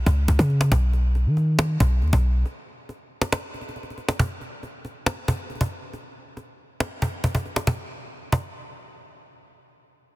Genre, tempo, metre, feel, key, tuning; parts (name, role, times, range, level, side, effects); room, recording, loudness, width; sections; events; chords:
hip hop, trap; 138 BPM; 4/4; half-time; A4 = 440 Hz
warm 808-style bass; bass; 0.0-2.4 s; B1 to D#3; -19 LUFS; equal
cajon; drums; 0.1-8.4 s; -26 LUFS; equal
small room ambience; dense, heavily limited modern master; -21 LUFS; side -18 dB against mid
0.0-4.2 A section; 4.2-7.7 B section; 7.7-10.2 C section
break 2.5-4.2